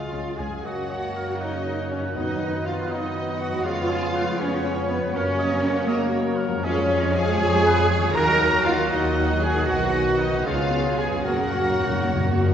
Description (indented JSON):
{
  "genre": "classical, dramatic, fast romantic movement for symphony orchestra",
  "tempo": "79 BPM (dotted quarters)",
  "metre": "6/8",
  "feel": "uneven beats, rubato",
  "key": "F# major",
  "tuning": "A4 = 444 Hz",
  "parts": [
    { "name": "warm symphonic violin section", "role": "melody", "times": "0.0-12.5 s", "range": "A#4 to A#5", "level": "-33 LUFS", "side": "left 3 dB", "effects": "none" },
    { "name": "mellow hollow concert flute", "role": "second line", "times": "0.0-12.5 s", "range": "A#4 to A#5", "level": "-32 LUFS", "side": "left 1 dB", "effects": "none" },
    { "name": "warm clarinet", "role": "second line", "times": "0.0-12.5 s", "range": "G#4 to C#5", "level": "-35 LUFS", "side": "left 1 dB", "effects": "none" },
    { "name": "warm bassoon", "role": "accompaniment", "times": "0.0-12.5 s", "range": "C#3 to B3", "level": "-33 LUFS", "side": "left 1 dB", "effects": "none" },
    { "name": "mellow French horn section", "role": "sustained chords", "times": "0.0-12.5 s", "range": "G#3 to G#4", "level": "-34 LUFS", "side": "left 3 dB", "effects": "none" },
    { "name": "concert harp", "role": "arpeggios", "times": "0.0-12.5 s", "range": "E#2 to C#5", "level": "-33 LUFS", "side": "left 5 dB", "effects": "none" },
    { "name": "warm trumpet", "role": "stabs", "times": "0.0-12.5 s", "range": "A#3 to A#4", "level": "-31 LUFS", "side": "right 1 dB", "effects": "none" },
    { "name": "warm symphonic cello section", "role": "bass", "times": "0.0-12.5 s", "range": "A#3 to A#4", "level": "-26 LUFS", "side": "right 1 dB", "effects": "none" },
    { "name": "warm symphonic viola section", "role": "accompaniment", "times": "0.1-12.5 s", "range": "D#3 to A#4", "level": "-33 LUFS", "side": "equal", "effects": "none" },
    { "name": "rich symphonic double bass section", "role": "bass", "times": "0.1-12.5 s", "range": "B1 to F#2", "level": "-29 LUFS", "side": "right 2 dB", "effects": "none" },
    { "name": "mellow cor anglais", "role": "second line", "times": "0.6-12.4 s", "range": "F#4 to F#5", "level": "-32 LUFS", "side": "right 3 dB", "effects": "none" },
    { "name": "clear trombone section", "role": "sustained chords", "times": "0.6-12.5 s", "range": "C#3 to G#3", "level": "-33 LUFS", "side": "right 2 dB", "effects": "none" },
    { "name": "warm symphonic violin section", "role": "second line", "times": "0.7-12.5 s", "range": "F#4 to F#5", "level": "-36 LUFS", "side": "left 2 dB", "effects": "none" },
    { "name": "timpani", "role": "percussion", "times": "2.2-2.9, 11.3-12.5 s", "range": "F#2", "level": "-27 LUFS", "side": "left 2 dB", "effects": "none" }
  ],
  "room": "wet concert hall reverb, RT60 2.2 s",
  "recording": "heard from further back in the room, nothing above 7.8 kHz",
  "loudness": "-20 LUFS",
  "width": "side -9 dB against mid",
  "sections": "0.7-12.5 A section",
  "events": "timpani fill 11.3-12.5",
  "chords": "0.0 C#; 0.7 F#; 2.2 B/F#; 3.7 C#7/E#; 5.2 F#; 6.6 C#/E#; 8.2 D#m; 9.7 B; 10.5 C#7; 11.3 F#",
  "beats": "| 0.65 1.41 | 2.16 2.91 | 3.65 4.40 | 5.15 5.89 | 6.64 7.42 | 8.16 8.92 | 9.68 10.46 | 11.25 12.04"
}